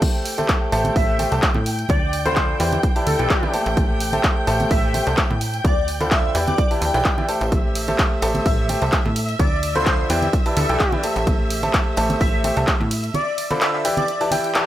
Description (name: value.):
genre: piano house.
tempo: 128 BPM.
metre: 4/4.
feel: swing 54% on 16ths.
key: A minor.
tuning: A4 = 443 Hz.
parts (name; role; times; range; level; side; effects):
rich studio violin section; sustained chords; 0.0-14.7 s; E5 to G6; -29 LUFS; equal; sidechain pumping.
clear concert grand piano; riff; 0.0-14.7 s; D3 to B5; -23 LUFS; equal; sidechain pumping.
electronic kick drum; drums; 0.0-12.8 s; none; -20 LUFS; equal; overdrive.
punchy analog drum machine; drums; 0.0-14.7 s; crash cymbal, handclaps, hi-hat, ride cymbal; -25 LUFS; equal; none.
tambourine and congas; percussion; 0.0-14.7 s; none; -30 LUFS; right 2 dB; none.
plucky analog bass; bass; 0.7-13.1 s; A1 to A2; -24 LUFS; equal; tube saturation, sidechain pumping.
airy dreamy lead; melody; 1.0-14.5 s; A4 to G5; -26 LUFS; equal; chorus, tape echo.
room: light reverb, digital ambience.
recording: none.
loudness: -17 LUFS.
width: side -13 dB against mid.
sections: 0.0-14.7 A section.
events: kick drops out 13.1-14.7.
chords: 0.0 Am7; 1.9 Dm7; 2.6 Em7; 3.8 Am7; 5.6 Dm7; 6.3 Em7; 7.5 Am7; 9.4 Dm7; 10.1 Em7; 11.3 Am7; 13.1 Dm7; 13.8 Em7.